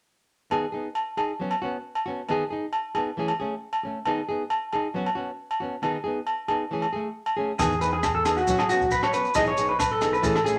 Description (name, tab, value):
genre	highlife guitar band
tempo	136 BPM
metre	4/4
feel	swing 53% on 16ths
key	E major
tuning	A4 = 440 Hz
part	nylon-string guitar	accompaniment	0.5-10.6 s	D#3 to G#4	-31 LUFS	equal	none
part	agogo bells	percussion	0.5-10.5 s	none	-31 LUFS	equal	none
part	electric guitar through a small old amp	arpeggios	7.6-10.6 s	F#4 to D#5	-25 LUFS	equal	spring reverb
part	fingered electric bass	bass	7.6-10.6 s	A1 to E2	-37 LUFS	equal	none
part	compact cocktail drum kit	drums	7.6-10.6 s	hi-hat, kick drum, rim click	-34 LUFS	equal	none
part	maracas	percussion	7.6-10.6 s	none	-40 LUFS	equal	none
room	moderate studio reverb, RT60 0.6 s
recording	none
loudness	-26 LUFS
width	mono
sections	0.5-7.6 A section; 7.6-10.6 B section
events	none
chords	0.5 G#m/D#; 1.4 Bsus2; 2.3 G#m/D#; 3.2 Amaj7; 4.1 G#m/D#; 4.9 Bsus2; 5.8 G#m/D#; 6.7 Amaj7; 7.6 Emaj7; 8.5 Bsus2; 9.4 Emaj7/B